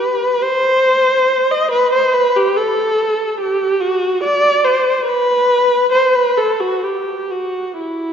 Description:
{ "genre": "classical, free, expressive piece for unaccompanied viola", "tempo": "56-74 BPM", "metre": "4/4", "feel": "rubato", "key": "E minor", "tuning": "A4 = 440 Hz", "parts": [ { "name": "warm viola", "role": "solo", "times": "0.0-8.1 s", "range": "E4 to D#5", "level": "-13 LUFS", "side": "equal", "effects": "none" } ], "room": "wet concert hall reverb, RT60 2.6 s", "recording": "nothing above 7.5 kHz", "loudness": "-13 LUFS", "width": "side -8 dB against mid", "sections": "0.0-8.1 A section", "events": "none", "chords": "none" }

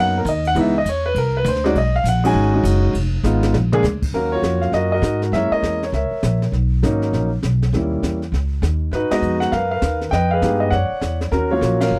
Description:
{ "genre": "jazz piano trio", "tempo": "201 BPM", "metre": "4/4", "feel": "swing 63% on 8ths", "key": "Eb minor", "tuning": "A4 = 440 Hz", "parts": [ { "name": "warm grand piano", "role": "melody", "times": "0.0-12.0 s", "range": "Fb3 to G#5", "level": "-21 LUFS", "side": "equal", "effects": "none" }, { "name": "upright bass", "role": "bass", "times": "0.0-12.0 s", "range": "F1 to Ab2", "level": "-22 LUFS", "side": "equal", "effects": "none" }, { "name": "jazz brush drum kit", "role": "drums", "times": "0.3-12.0 s", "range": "brushed snare drum, crash cymbal, hi-hat, kick drum, ride cymbal, snare drum, toms", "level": "-31 LUFS", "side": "equal", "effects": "none" } ], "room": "little or no reverb", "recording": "dry, close 1970s-style studio recording", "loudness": "-19 LUFS", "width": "mono", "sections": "0.0-4.1 A section; 4.1-12.0 B section", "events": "grand piano solo 0.0-4.1; drum fill 3.2-3.8; band accent 9.1, 11.8", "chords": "0.0 Bmaj7; 0.6 Dbm7; 1.2 Csus2; 1.8 B6; 2.9 Fm7b5; 3.5 Bb7; 4.1 Ebm9; 5.3 Gb7; 6.5 Bmaj7; 7.7 Eb7b9; 8.9 Abm9; 10.1 Fm7b5; 10.7 Dmaj9; 11.3 Ebm9" }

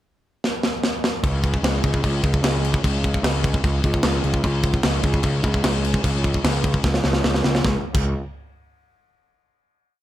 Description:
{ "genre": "heavy metal", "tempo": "150 BPM", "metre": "4/4", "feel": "straight", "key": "unclear", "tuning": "A4 = 439 Hz", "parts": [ { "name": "tight metal drum kit", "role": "drums", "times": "0.4-8.0 s", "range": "crash cymbal, kick drum, snare drum", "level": "-21 LUFS", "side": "equal", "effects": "none" }, { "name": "fuzz picked electric bass", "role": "bass", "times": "1.2-8.1 s", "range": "C#2", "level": "-21 LUFS", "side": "equal", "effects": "overdrive" } ], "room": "little or no reverb", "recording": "none", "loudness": "-18 LUFS", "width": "side -13 dB against mid", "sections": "0.0-1.2 pickup bar; 1.2-7.6 riff; 7.6-9.2 final note", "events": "drum fill 0.4-1.2, 6.8-7.6", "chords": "none" }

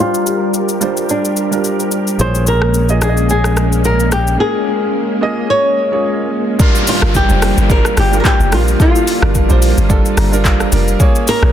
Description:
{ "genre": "amapiano", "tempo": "109 BPM", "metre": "4/4", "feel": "swing 55% on 16ths", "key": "G minor", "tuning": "A4 = 443 Hz", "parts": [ { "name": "flamenco guitar", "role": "melody", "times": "0.0-11.5 s", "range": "D4 to Db5", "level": "-17 LUFS", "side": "left 2 dB", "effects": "low-pass filter, tape echo" }, { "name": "warm grand piano", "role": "accompaniment", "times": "0.0-11.5 s", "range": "G3 to Bb5", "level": "-19 LUFS", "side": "right 5 dB", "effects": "low-pass filter" }, { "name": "soft string machine", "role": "sustained chords", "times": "0.0-11.5 s", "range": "G3 to Bb4", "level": "-20 LUFS", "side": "left 1 dB", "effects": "ensemble chorus, sidechain pumping, low-pass filter" }, { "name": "afro-pop drum kit", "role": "drums", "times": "0.1-11.5 s", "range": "handclaps, hi-hat, kick drum, rim click, shaker", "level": "-15 LUFS", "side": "equal", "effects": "none" }, { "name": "fingered electric bass", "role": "bass", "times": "2.2-4.4 s", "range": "Bb1", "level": "-14 LUFS", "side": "equal", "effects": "none" }, { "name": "downlifter", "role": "sound effects", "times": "6.6-11.0 s", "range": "none", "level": "-24 LUFS", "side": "equal", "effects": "none" }, { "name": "deep log drum bass", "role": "bass", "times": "7.0-11.5 s", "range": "F1 to Bb1", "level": "-13 LUFS", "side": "equal", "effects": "none" } ], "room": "light reverb, digital ambience", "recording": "dense, heavily limited modern master", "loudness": "-11 LUFS", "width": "side -10 dB against mid", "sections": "0.0-6.6 A section; 6.6-11.5 B section", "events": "filter sweep 0.0-6.6; break 4.4-6.6; drop 6.6-11.5; grand piano fill 9.9-11.0", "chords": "0.0 Gm7; 2.2 Bbm7; 6.6 Gm7; 11.0 Bbm7" }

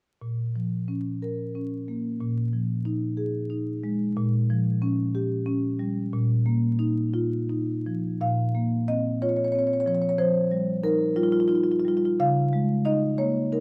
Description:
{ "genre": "classical, contemporary piece for solo marimba", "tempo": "54-63 BPM (dotted quarters)", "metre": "6/8", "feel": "rubato", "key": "Bb dorian", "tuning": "A4 = 440 Hz", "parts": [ { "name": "marimba with medium mallets", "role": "solo", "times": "0.2-13.6 s", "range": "Bb2 to F5", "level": "-26 LUFS", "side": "equal", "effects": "none" } ], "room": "light reverb", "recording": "close, detailed microphones, vinyl crackle", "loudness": "-26 LUFS", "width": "mono", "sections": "0.2-8.2 A section; 8.2-13.6 B section", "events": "none", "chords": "0.2 Bbm; 2.2 Fm7/Bb; 4.2 Bbm6; 6.1 Bbsus4; 8.2 Bbmadd9; 10.2 Fsus2; 12.2 Db69" }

